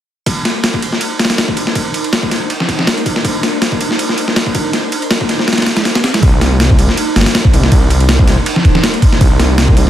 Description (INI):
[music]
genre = drum and bass, jungle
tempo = 161 BPM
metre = 4/4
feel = swing 54% on 16ths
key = C minor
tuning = A4 = 440 Hz
[part]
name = ethereal airy pad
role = sustained chords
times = 0.8-9.9 s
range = D4 to C5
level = -20 LUFS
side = right 1 dB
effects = ensemble chorus, built-in reverb, vintage 12-bit sampler grit
[part]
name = breakbeat sampler-style drum kit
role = drums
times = 0.3-9.9 s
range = kick drum, ride cymbal, snare drum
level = -12 LUFS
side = equal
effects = overdrive, high-pass filter on kick, high-pass filter on cymbals, high-pass filter on snare, high-pass filter on room
[part]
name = detuned saw bass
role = bass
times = 6.2-9.9 s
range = G1 to C2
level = -12 LUFS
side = equal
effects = none
[sound]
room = little or no reverb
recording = dense, heavily limited modern master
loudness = -10 LUFS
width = side -11 dB against mid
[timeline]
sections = 0.3-6.2 A section; 6.2-9.9 B section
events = kick drops out 5.5-6.2; drop 6.2-9.9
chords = 0.3 Cm9